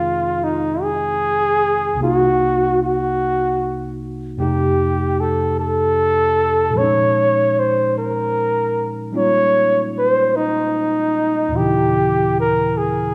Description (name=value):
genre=jazz ballad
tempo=50 BPM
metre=4/4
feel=swing 68% on 8ths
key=F minor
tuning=A4 = 440 Hz
part: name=breathy flugelhorn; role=melody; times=0.0-13.1 s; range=Eb4 to Db5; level=-19 LUFS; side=equal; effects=none
part: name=barky tine electric piano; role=accompaniment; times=0.0-13.1 s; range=C2 to G5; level=-24 LUFS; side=equal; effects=none
room=wet recital hall reverb, RT60 1.6 s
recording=recorded in a church or concert hall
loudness=-18 LUFS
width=mono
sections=0.0-13.1 A section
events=none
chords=0.0 Fm7; 2.0 Cm7b5; 4.4 F7; 6.8 Bbm7; 11.5 Eb7b9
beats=0.80 | 2.00 3.20 4.39 5.58 | 6.78 7.97 9.15 10.35 | 11.55 12.75